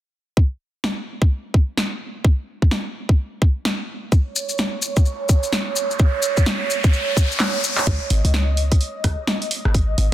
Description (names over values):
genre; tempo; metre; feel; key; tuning
UK garage, two-step garage; 128 BPM; 4/4; swing 61% on 16ths; unclear; A4 = 442 Hz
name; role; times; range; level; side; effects
electronic kick drum; drums; 0.4-9.9 s; none; -16 LUFS; equal; none
punchy analog drum machine; drums; 0.8-10.1 s; handclaps, hi-hat, rim click, snare drum; -24 LUFS; equal; none
airy breathy pad; sustained chords; 4.1-10.1 s; C#5 to D#5; -26 LUFS; right 6 dB; chorus, sidechain pumping
maracas; percussion; 4.1-7.9 s; none; -25 LUFS; left 4 dB; none
riser; sound effects; 5.2-7.9 s; none; -27 LUFS; equal; none
short 808-style bass; bass; 7.9-10.1 s; G#1 to C#2; -19 LUFS; equal; tube saturation
room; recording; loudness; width
light reverb, digital ambience; dense, heavily limited modern master; -18 LUFS; side -13 dB against mid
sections
0.4-7.9 A section; 7.9-10.1 B section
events
riser 5.2-7.9; drum fill 7.4-7.9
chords
0.4 N.C.; 7.9 C#5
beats
| 0.37 0.84 1.31 1.78 | 2.25 2.71 3.18 3.65 | 4.12 4.59 5.06 5.53 | 6.00 6.46 6.93 7.40 | 7.87 8.34 8.81 9.28 | 9.75